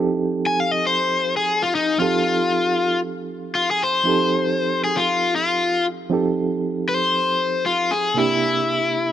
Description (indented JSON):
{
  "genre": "blues",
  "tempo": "116 BPM",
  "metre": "4/4",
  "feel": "swing 54% on 16ths",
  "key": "F mixolydian",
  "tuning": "A4 = 440 Hz",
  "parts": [
    { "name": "reed electric piano", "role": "accompaniment", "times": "0.0-9.1 s", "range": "C3 to A4", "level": "-23 LUFS", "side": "right 4 dB", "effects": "fast tremolo" },
    { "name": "cranked stack guitar", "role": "melody", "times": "0.5-9.1 s", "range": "Eb4 to Ab5", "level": "-19 LUFS", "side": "left 3 dB", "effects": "overdrive" }
  ],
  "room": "light reverb",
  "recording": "none",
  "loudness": "-18 LUFS",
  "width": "side -10 dB against mid",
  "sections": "0.0-9.1 A section",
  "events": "overdriven electric guitar solo 0.0-9.1",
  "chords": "0.0 F9; 8.2 C9"
}